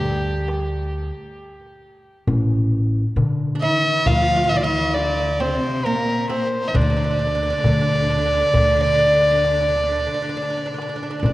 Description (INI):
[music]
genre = Arabic maqam ensemble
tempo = 134 BPM (eighths)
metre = 10/8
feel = straight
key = D maqam bayati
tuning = A4 = 440 Hz
[part]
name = warm violin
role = melody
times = 0.0-11.3 s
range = G4 to F5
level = -20 LUFS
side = equal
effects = tape echo
[part]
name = clear cello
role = second line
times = 0.0-11.3 s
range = G2 to F3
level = -28 LUFS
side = left 2 dB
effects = none
[part]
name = oud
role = second line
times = 0.0-11.3 s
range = G3 to F4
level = -29 LUFS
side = right 3 dB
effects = none
[part]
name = upright bass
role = bass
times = 0.0-11.3 s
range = A1 to D3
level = -22 LUFS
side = equal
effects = none
[part]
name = darbuka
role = percussion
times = 0.5-11.3 s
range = none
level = -25 LUFS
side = left 2 dB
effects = none
[sound]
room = wet concert hall reverb, RT60 2.5 s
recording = worn, warbling old tape, cassette tape, warbly pitch drift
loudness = -17 LUFS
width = side -16 dB against mid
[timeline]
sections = 0.0-11.3 A section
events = none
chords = none